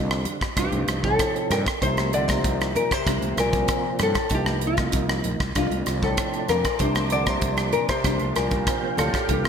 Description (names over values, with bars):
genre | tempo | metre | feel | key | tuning
electric jazz fusion | 96 BPM | 4/4 | straight | C dorian | A4 = 444 Hz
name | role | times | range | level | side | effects
nylon-string guitar | melody | 0.0-9.5 s | F4 to D5 | -26 LUFS | left 1 dB | analog chorus, digital delay
warm bass clarinet | second line | 0.0-9.5 s | F2 to D3 | -31 LUFS | left 4 dB | none
tonewheel organ | accompaniment | 0.0-9.5 s | C3 to F4 | -31 LUFS | right 5 dB | slow rotary speaker, chorus vibrato
fretless electric bass | bass | 0.0-9.5 s | Bb1 to G2 | -27 LUFS | equal | none
crisp fusion drum kit | drums | 0.1-9.5 s | hi-hat, kick drum, rim click | -26 LUFS | equal | gated reverb
congas | percussion | 0.3-9.5 s | none | -36 LUFS | left 1 dB | none
mellow electric guitar | stabs | 0.6-9.5 s | C4 to G4 | -33 LUFS | left 2 dB | ensemble chorus
soft string machine | sustained chords | 5.6-9.5 s | G4 to D6 | -33 LUFS | right 1 dB | phaser, ensemble chorus
room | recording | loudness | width
moderate lush hall reverb, RT60 2.1 s | bright 1980s-style digital production | -21 LUFS | side -7 dB against mid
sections
0.0-9.5 A section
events
none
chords
0.0 Csus4; 0.6 Cm7; 5.6 Bbmaj9/C; 8.0 Gm7/C